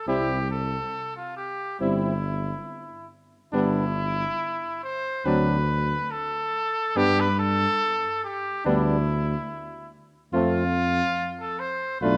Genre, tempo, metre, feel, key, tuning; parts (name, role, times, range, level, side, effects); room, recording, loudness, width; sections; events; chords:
classical, brass quintet; 70 BPM; 4/4; rubato; C major; A4 = 444 Hz
warm trumpet; melody; 0.0-12.2 s; E4 to C5; -29 LUFS; equal
warm flugelhorn; second line; 0.1-12.2 s; D4 to F4; -34 LUFS; equal
warm French horn; accompaniment; 0.1-12.2 s; B3 to D4; -33 LUFS; equal
warm trombone; accompaniment; 0.1-12.2 s; F#3 to A3; -32 LUFS; equal
dark tuba; bass; 0.1-12.2 s; G1 to G2; -30 LUFS; equal
moderate concert hall reverb, RT60 2.0 s; -26 LUFS; mono
0.0-12.2 A section
0.1 C; 3.5 G; 5.3 D7; 7.0 G; 10.3 F